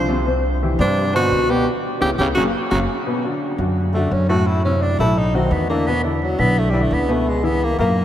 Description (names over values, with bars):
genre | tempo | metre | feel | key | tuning
jazz | 171 BPM | 4/4 | straight | B minor from 3.1 s | A4 = 436 Hz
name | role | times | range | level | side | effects
breathy tenor saxophone | melody | 0.0-8.0 s | D3 to B#4 | -21 LUFS | equal | analog delay
growling trombone | second line | 0.0-2.8 s | G2 to E#3 | -26 LUFS | right 2 dB | none
warm baby grand piano | accompaniment | 0.0-8.0 s | A2 to B#4 | -22 LUFS | left 2 dB | none
upright bass | bass | 0.0-8.0 s | F#1 to G2 | -21 LUFS | equal | none
room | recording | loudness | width
wet cathedral reverb, RT60 6.3 s | dreamy mix soaked in reverb | -16 LUFS | side -11 dB against mid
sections
0.0-3.1 A section; 3.1-8.0 B section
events
band accent 1.7-3.1; tenor saxophone solo 3.1-8.0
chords
0.3 Cmaj9; 1.7 C#m7b5; 2.4 F#; 3.1 Bm7; 4.5 F#m7b5; 5.2 B7; 5.9 E5; 7.3 C#m7